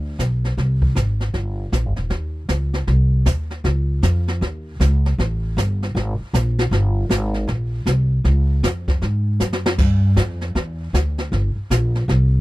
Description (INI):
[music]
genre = jazz piano trio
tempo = 156 BPM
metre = 4/4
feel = swing 64% on 8ths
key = unclear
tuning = A4 = 439 Hz
[part]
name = upright bass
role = bass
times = 0.0-12.4 s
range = Eb1 to Ab2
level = -18 LUFS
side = equal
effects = none
[part]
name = jazz brush drum kit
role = drums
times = 0.2-12.4 s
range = brushed snare drum, crash cymbal, hi-hat, kick drum, snare drum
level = -22 LUFS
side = equal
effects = none
[sound]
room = little or no reverb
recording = dry, close 1970s-style studio recording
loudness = -17 LUFS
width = side -18 dB against mid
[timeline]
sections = 0.0-3.6 A section; 3.6-12.4 B section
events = drum fill 9.4-9.8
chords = none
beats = 0.19 | 0.57 0.96 1.34 1.73 | 2.11 2.49 2.88 3.26 | 3.65 4.03 4.41 4.80 | 5.18 5.57 5.95 6.33 | 6.72 7.10 7.48 7.87 | 8.25 8.63 9.02 9.40 | 9.79 10.17 10.55 10.94 | 11.32 11.70 12.09